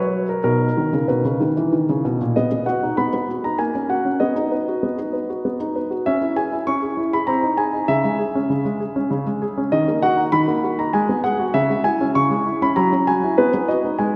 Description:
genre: classical-period piano sonatina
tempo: 98 BPM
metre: 3/4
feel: straight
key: B major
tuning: A4 = 440 Hz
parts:
  - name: warm concert grand piano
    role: solo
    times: 0.0-14.2 s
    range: A#2 to C#6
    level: -20 LUFS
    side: equal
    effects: none
room: wet church reverb, RT60 2.8 s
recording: none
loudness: -20 LUFS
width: mono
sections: 0.0-2.4 A section; 2.4-14.2 B section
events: none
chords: 0.5 B; 3.6 F#/A#; 4.2 B; 6.1 C#m; 7.3 G#/B#; 7.9 C#m; 9.7 D#m; 10.9 G#m7; 11.6 C#m; 12.8 F#7; 13.4 B

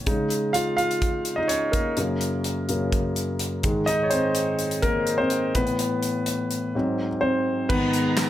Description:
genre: piano-driven pop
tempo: 126 BPM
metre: 4/4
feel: straight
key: unclear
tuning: A4 = 444 Hz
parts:
  - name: warm concert grand piano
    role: accompaniment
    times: 0.0-8.3 s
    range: Gb2 to F5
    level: -22 LUFS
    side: equal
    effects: none
  - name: modern studio drum kit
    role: drums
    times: 0.1-8.3 s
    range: crash cymbal, handclaps, hi-hat, kick drum, snare drum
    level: -28 LUFS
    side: equal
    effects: none
  - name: warm studio string section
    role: sustained chords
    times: 7.7-8.3 s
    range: Ab2 to Bb5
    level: -31 LUFS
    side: right 3 dB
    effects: none
room: light reverb, small room ambience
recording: none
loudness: -22 LUFS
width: side -12 dB against mid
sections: 0.0-7.7 A section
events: grand piano solo 0.0-7.7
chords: 0.1 Dbsus2; 2.0 Gb; 3.6 Abadd9; 5.6 Asus2; 6.7 Ab7; 7.7 Abmadd9

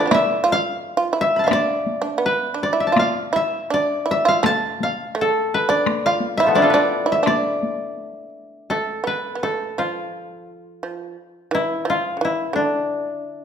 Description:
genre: japanese traditional, Japanese chamber music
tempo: 84 BPM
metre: 2/4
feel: rubato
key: D kumoi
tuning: A4 = 438 Hz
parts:
  - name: koto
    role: melody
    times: 0.0-13.4 s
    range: F3 to B5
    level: -20 LUFS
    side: left 2 dB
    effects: none
  - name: shamisen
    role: second line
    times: 0.0-13.4 s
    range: D3 to A4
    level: -23 LUFS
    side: right 4 dB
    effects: none
  - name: taiko ensemble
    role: percussion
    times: 0.1-7.8 s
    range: none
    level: -25 LUFS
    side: left 2 dB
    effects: none
room: wet recital hall reverb, RT60 1.4 s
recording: minimal, uncompressed stereo recording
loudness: -18 LUFS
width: side -8 dB against mid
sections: 0.0-8.7 A section; 8.7-13.4 B section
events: none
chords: none

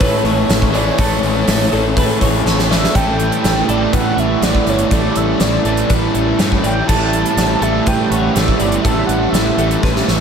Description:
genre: rock, shoegaze and dream pop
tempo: 122 BPM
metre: 4/4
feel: straight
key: unclear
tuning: A4 = 440 Hz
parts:
  - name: mellow horn-like synth lead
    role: melody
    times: 0.0-9.8 s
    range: C#5 to A5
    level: -22 LUFS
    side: right 1 dB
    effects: chorus, analog delay
  - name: twelve-string electric guitar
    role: arpeggios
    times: 0.0-10.2 s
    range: A4 to D5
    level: -25 LUFS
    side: left 1 dB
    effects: lush chorus, analog delay
  - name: distorted electric guitar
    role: riff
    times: 0.0-10.2 s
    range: A2 to A3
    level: -22 LUFS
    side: right 1 dB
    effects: overdrive
  - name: overdriven electric guitar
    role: riff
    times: 0.0-10.2 s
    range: A2 to A4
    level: -20 LUFS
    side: right 8 dB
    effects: reverse reverb
  - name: overdriven semi-hollow guitar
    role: riff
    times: 0.0-10.2 s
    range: A2 to A4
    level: -21 LUFS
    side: left 9 dB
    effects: analog chorus
  - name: fuzz fingered electric bass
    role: bass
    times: 0.0-10.2 s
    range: G1 to A2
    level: -20 LUFS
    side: equal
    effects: overdrive
  - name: gated 80s drum kit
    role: drums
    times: 0.0-10.2 s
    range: crash cymbal, hi-hat, kick drum, snare drum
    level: -18 LUFS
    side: equal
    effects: none
room: moderate huge ambient reverb, RT60 4.5 s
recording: dreamy mix soaked in reverb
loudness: -12 LUFS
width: side -7 dB against mid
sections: 0.0-3.0 A section; 3.0-10.2 B section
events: drum fill 2.5-3.0, 9.8-10.2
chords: 0.0 Aadd9; 3.0 A7sus4

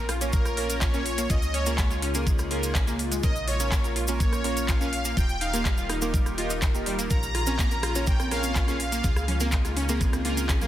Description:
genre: progressive house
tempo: 124 BPM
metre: 4/4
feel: straight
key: Bb dorian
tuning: A4 = 440 Hz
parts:
  - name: soft supersaw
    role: melody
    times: 0.0-9.5 s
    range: Bb4 to Bb5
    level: -33 LUFS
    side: equal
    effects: sidechain pumping, dub echo
  - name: evolving wavetable pad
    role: sustained chords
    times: 0.0-10.7 s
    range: Db3 to Bb4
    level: -36 LUFS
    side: left 2 dB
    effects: chorus, built-in reverb, sidechain pumping
  - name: wide unison pluck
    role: arpeggios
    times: 0.0-10.7 s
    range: G3 to Bb4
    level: -33 LUFS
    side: equal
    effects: sidechain pumping, dub echo
  - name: tight sequencer bass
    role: bass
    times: 0.0-10.7 s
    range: Eb1 to Db2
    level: -31 LUFS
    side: equal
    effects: sidechain pumping
  - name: pop drum kit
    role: drums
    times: 0.1-10.7 s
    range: handclaps, hi-hat, rim click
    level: -33 LUFS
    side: equal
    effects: sidechain pumping on hats, studio reverb
  - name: chorused polysynth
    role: stabs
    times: 0.2-10.7 s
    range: Bb3 to Db5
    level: -33 LUFS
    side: right 2 dB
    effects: sidechain pumping, dub echo
  - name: cabasa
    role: percussion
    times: 0.2-10.7 s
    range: none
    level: -36 LUFS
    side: right 2 dB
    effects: none
  - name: electronic kick drum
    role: drums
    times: 0.3-10.6 s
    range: none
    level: -24 LUFS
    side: equal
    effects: studio reverb
  - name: electronic rim click and congas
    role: percussion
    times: 7.3-10.7 s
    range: none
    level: -34 LUFS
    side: right 1 dB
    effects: soft clipping on snare, sidechain pumping on snare, studio reverb, sidechain pumping on perc
room: light reverb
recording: dense, heavily limited modern master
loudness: -23 LUFS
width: side -12 dB against mid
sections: 0.0-10.7 A section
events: none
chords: 0.0 Bbm; 1.3 Db6; 3.2 Bbm; 5.2 Ebadd9; 7.1 Bbm; 9.0 Db6

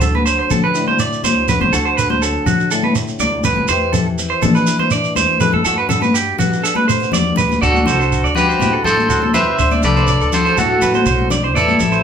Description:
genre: highlife guitar band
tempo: 122 BPM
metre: 4/4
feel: straight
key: D mixolydian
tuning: A4 = 440 Hz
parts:
  - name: flamenco guitar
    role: accompaniment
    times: 0.0-12.0 s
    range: G2 to A4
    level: -25 LUFS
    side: left 3 dB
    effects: none
  - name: clean electric guitar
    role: arpeggios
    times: 0.0-12.0 s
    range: F#4 to D5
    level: -18 LUFS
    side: right 4 dB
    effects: none
  - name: upright bass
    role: bass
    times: 0.0-12.0 s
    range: A1 to G3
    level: -22 LUFS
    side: equal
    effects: none
  - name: congas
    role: percussion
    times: 0.0-11.9 s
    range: none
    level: -20 LUFS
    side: left 4 dB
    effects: none
  - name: shekere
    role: percussion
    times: 0.0-12.0 s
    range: none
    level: -23 LUFS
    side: right 4 dB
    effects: none
  - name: electric guitar at the edge of break-up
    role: melody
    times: 7.6-12.0 s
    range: E4 to E5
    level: -16 LUFS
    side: right 1 dB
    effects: tremolo
  - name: mellow trumpet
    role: second line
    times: 7.6-12.0 s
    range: E4 to C5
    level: -24 LUFS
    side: left 3 dB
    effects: none
room: wet studio reverb, RT60 0.6 s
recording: band playing live in one room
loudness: -13 LUFS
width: side -7 dB against mid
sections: 0.0-7.6 A section; 7.6-12.0 B section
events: none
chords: 0.0 D7; 3.7 Cadd9/E; 5.6 Gmaj7; 7.6 D7

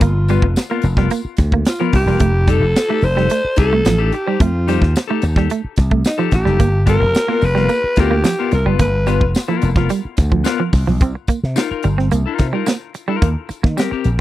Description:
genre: funk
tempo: 109 BPM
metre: 4/4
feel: straight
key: C dorian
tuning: A4 = 438 Hz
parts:
  - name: breathy alto saxophone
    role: melody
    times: 0.0-9.3 s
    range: Eb4 to C5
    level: -19 LUFS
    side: equal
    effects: none
  - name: semi-hollow electric guitar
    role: riff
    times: 0.0-13.9 s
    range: F3 to C4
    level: -20 LUFS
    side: right 6 dB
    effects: none
  - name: slap bass with an envelope filter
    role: bass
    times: 0.0-14.2 s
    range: E1 to Eb3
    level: -16 LUFS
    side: equal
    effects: none
  - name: tight funk drum kit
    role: drums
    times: 0.0-14.2 s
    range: hi-hat, kick drum, snare drum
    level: -16 LUFS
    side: equal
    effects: none
  - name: tambourine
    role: percussion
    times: 0.0-14.2 s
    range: none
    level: -36 LUFS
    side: left 6 dB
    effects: none
  - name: clean electric guitar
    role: accompaniment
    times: 0.3-14.1 s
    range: B3 to C5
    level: -23 LUFS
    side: left 10 dB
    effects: spring reverb
room: little or no reverb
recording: dry, close 1970s-style studio recording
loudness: -14 LUFS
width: side -15 dB against mid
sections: 0.0-11.0 A section; 11.0-14.2 B section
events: none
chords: 0.0 G7#9; 2.2 F9; 6.6 G7#9; 11.0 Cm7; 13.2 Eb6

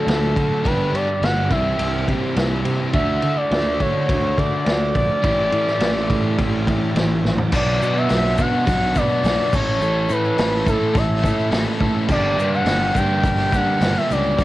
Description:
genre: indie rock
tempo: 105 BPM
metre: 4/4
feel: straight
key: unclear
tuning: A4 = 436 Hz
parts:
  - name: expressive portamento lead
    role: melody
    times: 0.0-14.4 s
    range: A4 to G5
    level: -22 LUFS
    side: equal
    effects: chorus, cassette tape
  - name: biting overdriven guitar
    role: riff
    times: 0.0-14.4 s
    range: E3 to A4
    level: -26 LUFS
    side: left 4 dB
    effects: cassette tape
  - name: thick fuzz guitar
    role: riff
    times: 0.0-14.4 s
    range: G2 to A4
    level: -25 LUFS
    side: right 5 dB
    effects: distortion, lush chorus, cassette tape, tape echo
  - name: fuzz fingered electric bass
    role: bass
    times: 0.0-14.4 s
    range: F#1 to D3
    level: -23 LUFS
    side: equal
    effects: overdrive, transformer saturation
  - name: vintage drum kit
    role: drums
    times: 0.1-14.4 s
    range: crash cymbal, hi-hat, kick drum, ride cymbal, snare drum, toms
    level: -23 LUFS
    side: equal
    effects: none
  - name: egg shaker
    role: percussion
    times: 7.5-14.4 s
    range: none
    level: -48 LUFS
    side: right 8 dB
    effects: none
room: studio ambience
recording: home recording on cassette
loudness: -17 LUFS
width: side -16 dB against mid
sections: 0.0-7.5 A section; 7.5-14.4 B section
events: drum fill 7.2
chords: 0.0 D; 0.7 G; 1.5 C; 2.9 Dmaj7; 5.2 A7sus4; 7.5 Bm; 9.5 A; 12.1 Gm

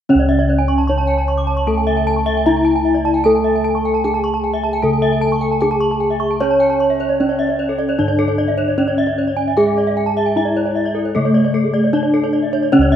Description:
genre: Balinese gamelan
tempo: 76 BPM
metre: 4/4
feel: straight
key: C# pelog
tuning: A4 = 437 Hz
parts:
  - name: gamelan-type bronze metallophone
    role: melody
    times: 0.1-13.0 s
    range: A3 to C#5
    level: -17 LUFS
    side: left 1 dB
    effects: none
  - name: gamelan-type bronze metallophone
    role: accompaniment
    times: 0.1-13.0 s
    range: C#3 to C#4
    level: -24 LUFS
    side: right 3 dB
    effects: none
  - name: gamelan-type bronze metallophone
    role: arpeggios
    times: 0.1-13.0 s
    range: A4 to D6+35c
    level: -22 LUFS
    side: left 4 dB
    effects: none
  - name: gamelan-type bossed gongs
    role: bass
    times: 0.1-13.0 s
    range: C#2 to C#5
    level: -21 LUFS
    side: equal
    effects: none
  - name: gamelan-type bronze metallophone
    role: arpeggios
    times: 0.2-12.9 s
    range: G#4 to C#6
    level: -23 LUFS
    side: right 7 dB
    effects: tape echo
room: moderate plate reverb, RT60 3.3 s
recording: rough home demo mix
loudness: -14 LUFS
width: side -9 dB against mid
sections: 0.1-13.0 A section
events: none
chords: none

